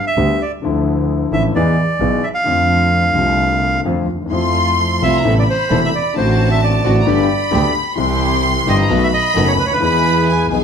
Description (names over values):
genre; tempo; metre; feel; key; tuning
tango; 131 BPM; 4/4; rubato; unclear; A4 = 440 Hz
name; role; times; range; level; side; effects
bandoneon; melody; 0.0-10.5 s; B4 to F5; -18 LUFS; right 2 dB; none
warm concert grand piano; accompaniment; 0.2-10.6 s; E1 to G#4; -18 LUFS; left 4 dB; none
warm double bass; bass; 0.2-10.6 s; E1 to F2; -19 LUFS; right 3 dB; none
rich studio violin section; second line; 4.3-10.6 s; G#5 to C6; -19 LUFS; left 2 dB; none
muted studio string section; stabs; 4.3-10.6 s; A3 to A4; -24 LUFS; right 3 dB; none
room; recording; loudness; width
moderate large studio reverb, RT60 1.1 s; none; -13 LUFS; side -7 dB against mid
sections
0.0-10.6 A section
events
none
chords
0.0 G; 0.6 Dmadd9; 1.6 E; 2.5 F6; 4.3 Fmaj7; 5.2 Amadd9; 6.2 D7/A; 7.1 Gadd9; 8.0 C; 8.9 B7; 9.8 E